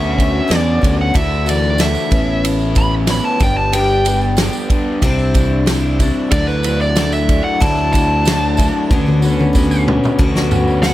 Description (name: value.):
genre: folk rock and heartland rock.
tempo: 93 BPM.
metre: 4/4.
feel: straight.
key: D major.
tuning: A4 = 439 Hz.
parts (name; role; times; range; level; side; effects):
dark smooth lead guitar; melody; 0.0-10.9 s; B4 to B5; -20 LUFS; equal; overdrive.
picked twelve-string acoustic guitar; accompaniment; 0.0-10.9 s; G2 to G4; -20 LUFS; left 3 dB; none.
crunchy overdriven guitar; riff; 0.0-10.9 s; G2 to F#4; -23 LUFS; right 1 dB; none.
modern bright fingered electric bass; bass; 0.0-10.9 s; G1 to E2; -18 LUFS; equal; none.
natural country drum kit; drums; 0.2-10.9 s; kick drum, ride cymbal, snare drum, toms; -17 LUFS; equal; none.
mellow tonewheel organ; sustained chords; 1.1-10.9 s; C#4 to B5; -28 LUFS; right 2 dB; slow rotary speaker.
tambourine; percussion; 1.3-10.9 s; none; -33 LUFS; right 6 dB; none.
room: light reverb.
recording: none.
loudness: -13 LUFS.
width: side -15 dB against mid.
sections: 0.0-10.9 A section.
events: lead electric guitar solo 0.0-10.9; drum fill 8.9-10.9.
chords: 0.0 Bmadd9/D; 1.1 Dadd9; 2.1 Aadd9; 3.4 G; 5.0 Cadd9; 6.3 Dadd9; 8.9 Bmadd9/D.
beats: 0.50 | 1.15 1.79 2.44 3.09 | 3.73 4.38 5.03 5.67 | 6.32 6.97 7.61 8.26 | 8.91 9.55 10.20 10.84.